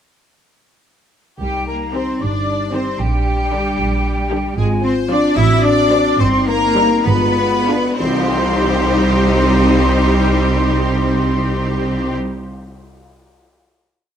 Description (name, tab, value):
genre	classical, dramatic, fast romantic movement for symphony orchestra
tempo	62-76 BPM (dotted quarters)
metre	6/8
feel	rubato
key	C minor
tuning	A4 = 441 Hz
part	rich studio violin section	second line	1.4-12.1 s	G4 to E5	-23 LUFS	left 3 dB	none
part	small flute group	second line	1.4-12.2 s	G5 to E6	-22 LUFS	left 1 dB	none
part	dark French horn section	sustained chords	1.4-12.2 s	G3 to F#4	-22 LUFS	left 6 dB	none
part	clear symphonic cello section	bass	1.4-12.2 s	G3 to E4	-20 LUFS	right 2 dB	none
part	rich symphonic double bass section	bass	1.4-12.2 s	G1 to C2	-19 LUFS	right 2 dB	none
part	rich studio violin section	melody	1.9-12.2 s	D4 to G4	-26 LUFS	left 3 dB	none
part	rich studio viola section	accompaniment	1.9-12.2 s	D3 to Eb4	-22 LUFS	right 1 dB	none
part	cymbal swell and tam-tam	percussion	4.6-10.5 s	none	-28 LUFS	left 2 dB	none
room	light reverb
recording	none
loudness	-14 LUFS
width	side -9 dB against mid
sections	1.4-8.0 A section; 8.0-11.7 final chord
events	slowing down 3.8-8.0; band accent 8.0-8.6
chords	1.4 Cm; 3.0 Gm/Bb; 4.6 Fm/Ab; 5.4 D7/A; 6.2 Cm/G; 7.1 G7b9; 8.0 Cm